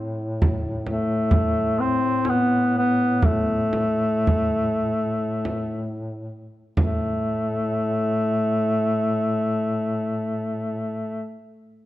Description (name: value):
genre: caucasian folk, Caucasian lament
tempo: 44-67 BPM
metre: 3/4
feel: rubato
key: A minor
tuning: A4 = 440 Hz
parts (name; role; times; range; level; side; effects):
- mellow duduk; drone; 0.0-11.3 s; A2; -30 LUFS; equal; none
- frame drum; percussion; 0.4-7.4 s; none; -23 LUFS; right 1 dB; none
- warm duduk; melody; 0.9-11.4 s; A3 to C4; -22 LUFS; left 1 dB; none
room: moderate recital hall reverb, RT60 1.7 s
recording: dark, warm production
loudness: -20 LUFS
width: side -15 dB against mid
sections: 0.0-6.8 A section; 6.8-10.7 B section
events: slowing down 0.4-6.8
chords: none